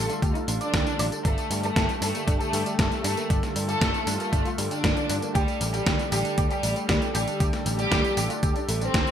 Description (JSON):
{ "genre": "italo disco", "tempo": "117 BPM", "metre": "4/4", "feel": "straight", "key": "unclear", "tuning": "A4 = 443 Hz", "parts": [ { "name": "warm studio violin section", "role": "melody", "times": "0.0-9.1 s", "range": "G3 to A4", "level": "-29 LUFS", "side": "equal", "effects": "ping-pong delay" }, { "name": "warm analog pad", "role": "sustained chords", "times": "0.0-9.1 s", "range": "D3 to A4", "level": "-32 LUFS", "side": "left 1 dB", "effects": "chorus" }, { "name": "direct-recorded clean electric guitar", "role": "arpeggios", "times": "0.0-9.0 s", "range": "G3 to D5", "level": "-35 LUFS", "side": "right 4 dB", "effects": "ensemble chorus, ping-pong delay" }, { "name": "picked electric bass", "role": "bass", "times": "0.0-9.0 s", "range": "G1 to G2", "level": "-30 LUFS", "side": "equal", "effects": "none" }, { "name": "detuned 8-bit digital drum machine", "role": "drums", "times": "0.1-9.1 s", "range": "hi-hat, snare drum, tambourine", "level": "-29 LUFS", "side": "equal", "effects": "overdrive, gated reverb" }, { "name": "electronic kick drum", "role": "drums", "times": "0.2-9.0 s", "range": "none", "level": "-27 LUFS", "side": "equal", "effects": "overdrive" } ], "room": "moderate plate reverb, RT60 1.0 s", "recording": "bright 1980s-style digital production", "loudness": "-22 LUFS", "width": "side -9 dB against mid", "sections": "0.0-9.1 A section", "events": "none", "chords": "0.0 Dsus4; 1.2 Gsus2; 5.4 Dsus4" }